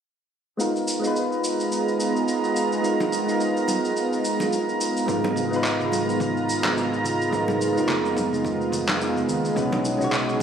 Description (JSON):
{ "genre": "sunset chillout", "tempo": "107 BPM", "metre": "4/4", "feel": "swing 58% on 16ths", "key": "G# dorian", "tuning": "A4 = 445 Hz", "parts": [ { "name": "soft electric-piano-like synth keys", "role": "accompaniment", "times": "0.6-10.4 s", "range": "G#3 to C#5", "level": "-25 LUFS", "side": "right 1 dB", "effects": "chorus, auto-pan, low-pass filter, ping-pong delay" }, { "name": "lush unison pad", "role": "sustained chords", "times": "0.9-10.4 s", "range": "C#3 to A#5", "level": "-25 LUFS", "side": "right 1 dB", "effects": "chorus" }, { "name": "electronic shaker, congas and handclaps", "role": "drums", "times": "0.6-10.4 s", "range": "none", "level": "-30 LUFS", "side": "equal", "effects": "overdrive" }, { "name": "congas", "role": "percussion", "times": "3.0-10.4 s", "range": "none", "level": "-31 LUFS", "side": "right 1 dB", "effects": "none" }, { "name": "overdriven fingered electric bass", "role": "bass", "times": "5.1-10.4 s", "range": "E#1 to D#2", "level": "-33 LUFS", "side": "equal", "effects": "none" }, { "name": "electronic kick drum", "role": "drums", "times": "5.1-9.7 s", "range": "none", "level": "-34 LUFS", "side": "equal", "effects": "overdrive" } ], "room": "moderate lush hall reverb, RT60 1.9 s", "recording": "recorded on a phone in the room, studio reverb", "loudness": "-21 LUFS", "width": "side -8 dB against mid", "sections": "0.6-5.1 A section; 5.1-10.4 B section", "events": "filter sweep on synth keys 0.6-5.1", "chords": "0.6 G#m69; 9.6 B69", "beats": "| 0.59 1.15 1.72 2.27 | 2.84 3.40 3.96 4.52 | 5.08 5.64 6.20 6.76 | 7.32 7.88 8.44 9.00 | 9.56 10.13" }